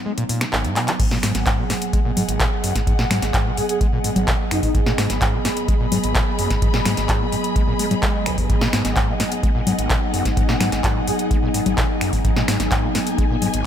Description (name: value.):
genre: acid house.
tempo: 128 BPM.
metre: 4/4.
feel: straight.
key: G# minor.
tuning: A4 = 439 Hz.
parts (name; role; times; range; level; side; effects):
warbly tape-like pad; sustained chords; 0.0-13.7 s; F#3 to G#4; -26 LUFS; right 2 dB; chorus, built-in reverb, sidechain pumping.
overdriven acid bass; riff; 0.1-13.6 s; G#1 to G#3; -25 LUFS; equal; distortion, lush chorus, sidechain pumping.
electro analog drum machine; drums; 0.2-13.6 s; congas, crash cymbal, finger snaps, handclaps, hi-hat, snare drum; -23 LUFS; left 1 dB; small room ambience.
electronic kick drum; drums; 1.0-13.3 s; none; -21 LUFS; equal; small room ambience.
dark studio string section; texture; 1.0-13.7 s; B3 to B5; -28 LUFS; left 2 dB; sidechain pumping.
breathy flute-like synth lead; melody; 3.6-4.7, 11.1-11.3 s; D#4 to G#4; -27 LUFS; left 1 dB; ensemble chorus, vintage 12-bit sampler grit, ping-pong delay.
room: light reverb, digital ambience.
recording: none.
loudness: -17 LUFS.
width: side -9 dB against mid.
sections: 1.0-13.7 A section.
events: break 0.0-1.0; drum fill 0.8; drop 1.0-13.7.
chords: 0.0 G#m7.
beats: 0.06 0.53 | 1.00 1.47 1.93 2.40 | 2.87 3.34 3.81 4.28 | 4.75 5.21 5.68 6.15 | 6.62 7.09 7.56 8.03 | 8.50 8.96 9.43 9.90 | 10.37 10.84 11.31 11.78 | 12.25 12.71 13.18 13.65.